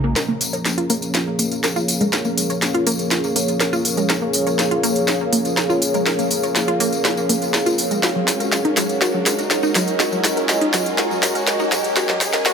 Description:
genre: melodic techno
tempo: 122 BPM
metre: 4/4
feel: straight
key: Bb minor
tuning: A4 = 438 Hz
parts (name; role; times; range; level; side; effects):
- dark analog pad; sustained chords; 0.0-12.5 s; F3 to Ab5; -24 LUFS; left 1 dB; chorus
- wide unison pluck; arpeggios; 0.0-12.5 s; Gb3 to Db5; -23 LUFS; equal; dub echo
- dark detuned saw bass; bass; 0.0-12.5 s; none; barely audible; none; none
- warbly tape-like pad; texture; 0.0-12.5 s; Ab4 to Bb5; -24 LUFS; equal; chorus, built-in reverb
- techno drum kit; drums; 0.2-12.5 s; hi-hat, snare drum; -21 LUFS; equal; high-pass filter on snare, low-pass filter on snare, high-pass filter on hats, low-pass filter on hats
- tambourine; percussion; 0.2-12.5 s; none; -27 LUFS; left 4 dB; none
- riser; sound effects; 3.2-12.5 s; none; -30 LUFS; right 2 dB; none
room: moderate lush hall reverb, RT60 2.0 s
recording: high-pass filter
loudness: -16 LUFS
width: side -6 dB against mid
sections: 0.2-12.5 A section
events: build-up 0.2-12.5; drum fill 0.2-12.5; filter sweep on synth arpeggio sound 0.2-12.5; riser 3.2-12.5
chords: 0.2 Bbm; 8.0 Gbadd9/Bb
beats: | 0.16 0.66 1.15 1.64 | 2.13 2.62 3.11 3.60 | 4.10 4.59 5.08 5.57 | 6.06 6.56 7.05 7.54 | 8.03 8.52 9.02 9.51 | 10.00 10.49 10.98 11.47 | 11.97 12.46

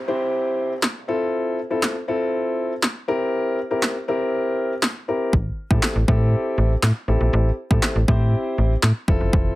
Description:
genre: dance-pop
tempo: 120 BPM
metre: 4/4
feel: straight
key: unclear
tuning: A4 = 440 Hz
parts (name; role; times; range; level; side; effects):
- downlifter; sound effects; 0.0-1.3 s; none; -43 LUFS; right 1 dB; none
- dark baby grand piano; accompaniment; 0.1-9.6 s; C4 to C5; -23 LUFS; left 1 dB; sidechain pumping
- punchy analog drum machine; drums; 0.8-9.4 s; handclaps, kick drum, snare drum; -20 LUFS; equal; overdrive
- slap-like FM bass; bass; 5.3-9.5 s; F1 to A2; -18 LUFS; equal; sidechain pumping
room: moderate small room reverb, RT60 0.5 s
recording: heavily compressed radio sound, multiband compression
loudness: -19 LUFS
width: side -18 dB against mid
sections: 0.0-9.6 A section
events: none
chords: 0.0 Am7 (rootless); 1.1 Fmaj7; 3.1 C7; 5.3 Am7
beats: 0.33 0.83 | 1.33 1.83 2.33 2.83 | 3.33 3.83 4.33 4.83 | 5.33 5.83 6.33 6.83 | 7.33 7.83 8.33 8.83 | 9.33

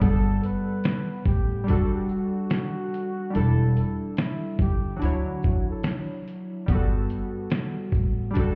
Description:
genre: lo-fi hip hop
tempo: 72 BPM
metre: 4/4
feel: swing 62% on 16ths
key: unclear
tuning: A4 = 439 Hz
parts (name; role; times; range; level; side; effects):
- mellow flugelhorn; melody; 0.0-5.8 s; E4 to B4; -37 LUFS; equal; slapback echo
- warm analog keys; accompaniment; 0.0-8.6 s; F#3 to F#5; -31 LUFS; equal; chorus
- upright bass; bass; 0.0-8.6 s; E1 to D2; -28 LUFS; equal; none
- dusty soul sampler-style drum kit; drums; 0.0-8.6 s; hi-hat, kick drum, shaker, snare drum; -27 LUFS; equal; vintage 12-bit sampler grit
room: light reverb, digital ambience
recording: heard muffled through a wall, club reverb, EQ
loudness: -25 LUFS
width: mono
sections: 0.0-8.6 A section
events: none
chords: 0.0 Gmaj9; 1.7 Em11; 3.3 A7sus4/E; 5.0 Dmaj9; 6.7 Gmaj9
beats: | 0.01 0.85 1.68 2.51 | 3.35 4.18 5.01 5.85 | 6.68 7.51 8.35

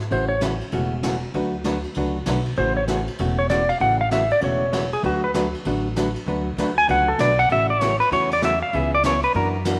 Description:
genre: country, western swing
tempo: 195 BPM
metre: 4/4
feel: swing 64% on 8ths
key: A major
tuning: A4 = 441 Hz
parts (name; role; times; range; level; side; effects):
- upright bass; bass; 0.0-9.8 s; E1 to F#2; -29 LUFS; equal; none
- jazz brush drum kit; drums; 0.0-9.7 s; hi-hat, ride cymbal, snare drum; -36 LUFS; equal; none
- clean lap steel guitar; melody; 0.1-0.4, 2.6-9.5 s; F#4 to G#5; -22 LUFS; equal; none
- hollow-body jazz guitar; accompaniment; 0.1-9.8 s; C#3 to B4; -27 LUFS; equal; none
room: moderate echo chamber reverb, RT60 1.8 s, small room ambience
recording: none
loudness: -21 LUFS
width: mono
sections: 0.1-9.8 A section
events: electric slide guitar solo 0.1-9.8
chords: 0.1 A6; 1.3 D6; 2.6 A6; 5.0 D6; 7.5 A6; 8.7 C#m7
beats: | 0.11 0.42 0.72 1.03 | 1.34 1.65 1.96 2.26 | 2.57 2.88 3.19 3.50 | 3.80 4.11 4.42 4.73 | 5.04 5.34 5.65 5.96 | 6.27 6.58 6.88 7.19 | 7.50 7.81 8.11 8.42 | 8.73 9.04 9.34 9.65

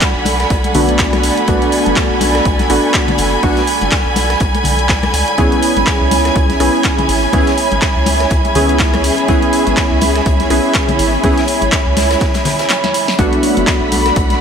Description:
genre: deep house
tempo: 123 BPM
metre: 4/4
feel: swing 57% on 16ths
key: unclear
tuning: A4 = 440 Hz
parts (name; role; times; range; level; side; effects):
- warbly tape-like pad; sustained chords; 0.0-14.4 s; E4 to B5; -19 LUFS; right 2 dB; chorus, built-in reverb, sidechain pumping
- electronic kick drum; drums; 0.0-14.3 s; none; -18 LUFS; equal; overdrive
- huge arena drum kit; drums; 0.0-14.4 s; hi-hat, snare drum; -27 LUFS; left 2 dB; none
- punchy analog drum machine; drums; 0.0-14.4 s; handclaps, hi-hat, rim click, snare drum; -20 LUFS; equal; overdrive
- warm studio violin section; texture; 0.0-14.4 s; G#5 to B6; -22 LUFS; left 1 dB; sidechain pumping
- warm symphonic string section; texture; 0.0-14.4 s; C#4 to B5; -22 LUFS; right 2 dB; sidechain pumping
- round analog bass; bass; 0.2-14.3 s; F#1 to C#2; -19 LUFS; equal; sidechain pumping
- congas; percussion; 0.3-14.4 s; none; -24 LUFS; left 4 dB; none
- warm analog keys; stabs; 0.7-14.4 s; A3 to G#4; -17 LUFS; equal; chorus, sidechain pumping, low-pass filter, tape echo
room: moderate cathedral reverb, RT60 5.3 s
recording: dreamy mix soaked in reverb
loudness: -11 LUFS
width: side -7 dB against mid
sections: 0.0-14.4 A section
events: filter sweep on synth keys 0.0-14.4; kick drops out 12.7-13.2; drum fill 12.7-13.2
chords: 0.0 Bm7; 5.1 C#m7; 13.2 Bm7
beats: 0.02 0.51 0.99 | 1.48 1.97 2.46 2.94 | 3.43 3.92 4.41 4.89 | 5.38 5.87 6.36 6.85 | 7.33 7.82 8.31 8.80 | 9.29 9.77 10.26 10.75 | 11.24 11.72 12.21 12.70 | 13.19 13.68 14.16

